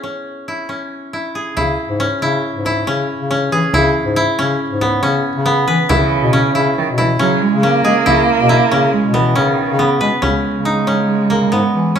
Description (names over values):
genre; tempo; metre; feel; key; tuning
contemporary instrumental, chamber music in an uneven meter; 139 BPM; 5/4; straight; C# dorian; A4 = 441 Hz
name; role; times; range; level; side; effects
koto; arpeggios; 0.0-12.0 s; A#3 to B4; -16 LUFS; equal; none
mellow bass clarinet; bass; 1.6-11.9 s; G#2 to G#3; -18 LUFS; left 3 dB; none
frame drum; percussion; 1.6-11.5 s; none; -23 LUFS; right 1 dB; none
rich cello; second line; 5.9-12.0 s; B2 to A#3; -16 LUFS; right 5 dB; none
room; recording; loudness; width
moderate recital hall reverb, RT60 1.4 s; minimal, uncompressed stereo recording; -13 LUFS; side -8 dB against mid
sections
0.0-1.6 A section; 1.6-10.2 B section; 10.2-12.0 C section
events
none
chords
0.0 C#m7; 5.9 E6; 10.2 C#m7